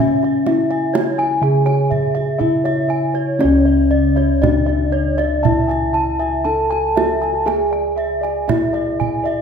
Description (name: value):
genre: Javanese gamelan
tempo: 59-65 BPM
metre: 4/4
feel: straight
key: C# pelog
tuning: A4 = 439 Hz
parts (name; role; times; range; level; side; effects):
- gamelan-type bronze metallophone; melody; 0.0-9.4 s; C#4 to A4; -19 LUFS; left 2 dB; none
- gamelan-type bossed gongs; arpeggios; 0.0-9.4 s; C#5 to A5; -24 LUFS; left 4 dB; none
- gamelan-type bronze metallophone; arpeggios; 0.0-9.4 s; C#5 to A5; -23 LUFS; right 3 dB; none
- gamelan-type bossed gongs; bass; 0.0-9.4 s; C#2 to G#4; -20 LUFS; equal; none
- kendang; percussion; 0.2-9.4 s; none; -24 LUFS; right 5 dB; none
room: moderate concert hall reverb, RT60 2.0 s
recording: minimal, uncompressed stereo recording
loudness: -15 LUFS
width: side -6 dB against mid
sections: 0.0-3.4 A section; 3.4-9.4 B section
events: none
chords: none